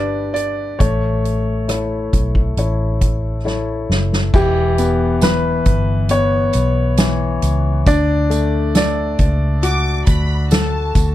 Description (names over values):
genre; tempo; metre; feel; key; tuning
pop ballad; 68 BPM; 4/4; straight; unclear; A4 = 440 Hz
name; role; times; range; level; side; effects
clear grand piano; melody; 0.0-10.5 s; G4 to D5; -22 LUFS; right 1 dB; tape echo
clear baby grand piano; accompaniment; 0.0-11.1 s; E3 to C#5; -21 LUFS; left 4 dB; none
vintage muted fingered electric bass; bass; 0.0-11.1 s; E1 to D2; -19 LUFS; equal; none
soft-mallet drum kit; drums; 0.4-11.1 s; crash cymbal, hi-hat, kick drum, rim click, snare drum; -17 LUFS; equal; none
tambourine; percussion; 4.3-11.1 s; none; -34 LUFS; right 12 dB; none
clear studio violin section; second line; 9.6-11.1 s; A5 to D6; -25 LUFS; right 1 dB; none
room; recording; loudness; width
little or no reverb; none; -14 LUFS; side -14 dB against mid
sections
0.0-4.3 A section; 4.3-11.1 B section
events
drum fill 3.5-4.3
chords
0.0 G; 0.8 A; 4.3 Em; 7.9 D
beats
| 0.81 1.69 2.57 3.45 | 4.34 5.22 6.10 6.98 | 7.87 8.75 9.63 10.51